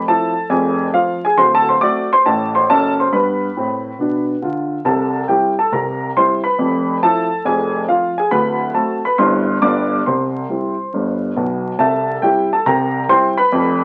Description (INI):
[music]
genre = jazz, stride piano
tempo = 138 BPM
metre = 4/4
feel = swing 64% on 8ths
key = C major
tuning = A4 = 443 Hz
[part]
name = warm baby grand piano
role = solo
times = 0.0-13.8 s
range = D1 to D6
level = -17 LUFS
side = equal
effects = none
[sound]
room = moderate studio ambience, RT60 0.5 s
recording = very old 78 rpm record, vinyl crackle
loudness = -17 LUFS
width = mono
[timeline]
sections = 0.0-11.8 A section; 11.8-13.8 A section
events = none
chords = 0.0 Fmaj7; 0.5 Fm; 1.4 D7; 3.1 G; 4.8 C; 5.7 C7; 6.6 Fmaj7; 7.5 Fm; 8.3 D7; 9.2 C/G; 9.6 G7; 10.1 C; 12.7 C7